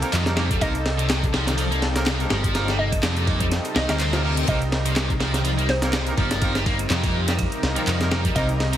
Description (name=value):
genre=breakbeat, breaks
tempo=124 BPM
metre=4/4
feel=swing 55% on 16ths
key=C dorian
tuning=A4 = 441 Hz
part: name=lush unison pad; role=sustained chords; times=0.0-8.8 s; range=C3 to Bb4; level=-29 LUFS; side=equal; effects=chorus, sidechain pumping
part: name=brilliant horn section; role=stabs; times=0.0-8.5 s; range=Bb3 to Bb4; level=-32 LUFS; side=right 2 dB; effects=vintage 12-bit sampler grit, digital delay
part: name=picked electric bass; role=bass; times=0.0-8.8 s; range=G1 to F2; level=-24 LUFS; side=equal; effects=none
part: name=breakbeat sampler-style drum kit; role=drums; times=0.0-8.8 s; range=kick drum, ride cymbal, snare drum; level=-25 LUFS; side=equal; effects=studio reverb
part: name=garage drum kit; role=drums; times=0.0-8.8 s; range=handclaps, hi-hat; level=-32 LUFS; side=equal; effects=overdrive, studio reverb
part: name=high-gain distorted guitar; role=riff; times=0.1-8.8 s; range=Bb2 to C4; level=-28 LUFS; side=equal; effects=distortion, digital delay
part: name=hollow square pluck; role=melody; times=0.6-8.8 s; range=C5 to Eb5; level=-30 LUFS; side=equal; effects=chorus, small speaker sound, digital delay
part: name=reverse cymbal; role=sound effects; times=4.1-4.5 s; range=none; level=-34 LUFS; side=left 6 dB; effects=none
room=light reverb, digital ambience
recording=heavily compressed radio sound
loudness=-20 LUFS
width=side -11 dB against mid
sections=0.0-8.8 A section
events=reverse cymbal 4.1-4.5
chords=0.0 Cm7